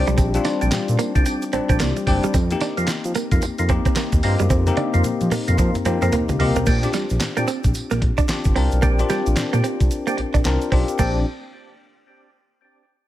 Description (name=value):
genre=R&B, new jack swing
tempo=111 BPM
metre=4/4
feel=swing 61% on 16ths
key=Bb major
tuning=A4 = 440 Hz
part: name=bell-like tine electric piano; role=accompaniment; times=0.0-11.2 s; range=G3 to Bb4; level=-24 LUFS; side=left 4 dB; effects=phaser
part: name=percussive tonewheel organ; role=stabs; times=0.0-11.2 s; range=Bb3 to G4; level=-28 LUFS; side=right 2 dB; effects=chorus vibrato, slow rotary speaker
part: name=smooth synth bass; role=bass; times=0.0-11.2 s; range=Gb1 to F3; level=-21 LUFS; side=equal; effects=none
part: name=direct-recorded clean electric guitar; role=riff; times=0.1-11.2 s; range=G3 to D4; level=-26 LUFS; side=right 6 dB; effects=lush chorus
part: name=dusty soul sampler-style drum kit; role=drums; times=0.1-11.1 s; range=crash cymbal, handclaps, hi-hat, kick drum, snare drum, tambourine, toms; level=-22 LUFS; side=equal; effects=none
part: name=tube shaker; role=percussion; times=0.1-11.2 s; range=none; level=-39 LUFS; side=right 7 dB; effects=none
room=little or no reverb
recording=none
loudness=-17 LUFS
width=side -13 dB against mid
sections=0.0-6.7 A section; 6.7-11.0 B section; 11.0-13.1 C section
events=drum fill 4.5-6.7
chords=0.0 Bb69; 2.3 F7sus4; 6.7 Bb69